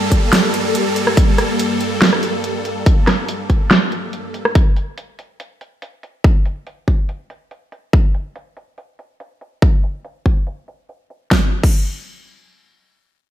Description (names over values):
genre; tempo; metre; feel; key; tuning
heavy wobble dubstep; 142 BPM; 4/4; half-time; G minor; A4 = 441 Hz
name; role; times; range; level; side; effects
supersaw chords; sustained chords; 0.0-4.5 s; G2 to A4; -19 LUFS; equal; phaser, sidechain pumping
big-room dance drum kit; drums; 0.1-11.8 s; crash cymbal, hi-hat, rim click, snare drum; -17 LUFS; right 1 dB; overdrive, low-pass filter on hats, studio reverb, low-pass filter on snare, low-pass filter on toms, low-pass filter on cymbals
electronic kick drum; drums; 0.1-11.8 s; none; -13 LUFS; equal; overdrive, studio reverb
room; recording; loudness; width
light reverb, digital ambience; none; -14 LUFS; side -12 dB against mid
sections
0.0-11.3 A section; 11.3-13.3 B section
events
none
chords
0.0 Gmadd9; 4.6 N.C.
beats
0.33 0.75 | 1.17 1.59 2.02 2.44 | 2.86 3.29 3.71 4.13 | 4.55 4.97 5.40 5.82 | 6.24 6.67 7.09 7.51 | 7.93 8.36 8.78 9.20 | 9.62 10.04 10.47 10.89 | 11.31 11.74